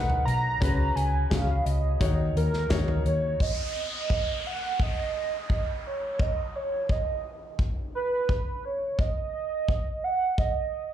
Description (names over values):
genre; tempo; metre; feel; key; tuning
piano-driven pop; 86 BPM; 4/4; straight; Eb minor; A4 = 440 Hz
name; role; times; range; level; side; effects
warm velvety synth lead; melody; 0.0-10.9 s; Bb4 to A#5; -29 LUFS; right 3 dB; chorus, slapback echo
felt-muted upright piano; accompaniment; 0.0-3.4 s; Db3 to Db5; -33 LUFS; left 3 dB; slapback echo
vintage muted fingered electric bass; bass; 0.0-3.3 s; B1 to Eb2; -26 LUFS; left 1 dB; none
natural country drum kit; drums; 0.1-10.5 s; hi-hat, kick drum, snare drum, toms; -27 LUFS; equal; none
downlifter; sound effects; 3.4-9.0 s; none; -38 LUFS; equal; slapback echo
room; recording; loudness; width
light reverb; live gig heard through the venue's PA, club reverb; -25 LUFS; side -10 dB against mid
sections
0.0-3.4 A section; 3.4-10.9 B section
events
none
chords
0.0 Bmaj7; 0.6 Db7sus4; 2.0 Ebm7; 3.4 N.C.